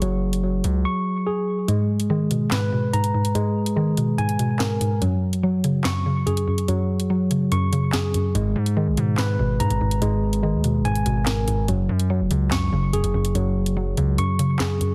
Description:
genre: hip hop, drill.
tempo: 144 BPM.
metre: 4/4.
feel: half-time.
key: unclear.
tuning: A4 = 439 Hz.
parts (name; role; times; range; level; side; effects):
tine electric piano; arpeggios; 0.0-14.9 s; F#3 to C#6; -26 LUFS; equal; low-pass filter, digital delay.
distorted 808-style bass; bass; 0.0-0.9, 8.3-14.2 s; E1 to G#2; -27 LUFS; equal; distortion.
drill drum kit; drums; 0.0-14.9 s; handclaps, hi-hat, snare drum; -31 LUFS; equal; none.
mallet-like synth pluck; accompaniment; 1.7-14.9 s; F#2 to F#3; -25 LUFS; equal; chorus, low-pass filter.
room: light reverb.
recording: dense, heavily limited modern master.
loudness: -22 LUFS.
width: mono.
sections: 0.0-14.9 A section.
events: drums muted 0.9-1.7; kick muted 1.7-8.4, 14.2-14.9.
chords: 0.0 F#sus2; 1.7 G#madd9; 5.0 F#sus2; 8.4 G#madd9; 11.7 F#sus2.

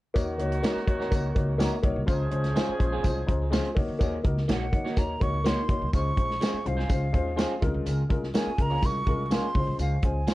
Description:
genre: uptempo 1960s-style soul.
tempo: 124 BPM.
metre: 4/4.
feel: straight.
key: unclear.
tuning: A4 = 444 Hz.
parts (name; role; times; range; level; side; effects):
dark upright piano; accompaniment; 0.1-10.3 s; Ab3 to Bb5; -31 LUFS; left 3 dB; none.
warm horn section; second line; 0.2-3.5 s; Eb3 to Ab4; -35 LUFS; right 2 dB; none.
upright bass; bass; 0.2-10.2 s; Bb1 to Eb3; -30 LUFS; equal; none.
warm soul drum kit; drums; 0.2-10.3 s; hi-hat, kick drum, snare drum; -27 LUFS; equal; vintage 12-bit sampler grit.
congas; percussion; 0.2-10.3 s; none; -40 LUFS; right 1 dB; none.
tambourine; percussion; 0.2-10.3 s; none; -45 LUFS; left 4 dB; none.
electric guitar through a small old amp; stabs; 0.6-10.3 s; Ab3 to Db5; -36 LUFS; right 4 dB; phaser, analog delay.
breathy hollow jazz flute; melody; 4.5-10.3 s; F5 to Db6; -32 LUFS; right 1 dB; none.
room: light reverb.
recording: cassette tape.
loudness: -24 LUFS.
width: side -17 dB against mid.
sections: 0.2-4.0 A section; 4.0-10.3 B section.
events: upright piano fill 3.0-4.0.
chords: 0.2 Ebm7; 2.1 Dbmaj7; 3.8 Ebm7; 5.9 Dbmaj7; 7.6 Bbm7; 9.6 Dbmaj7.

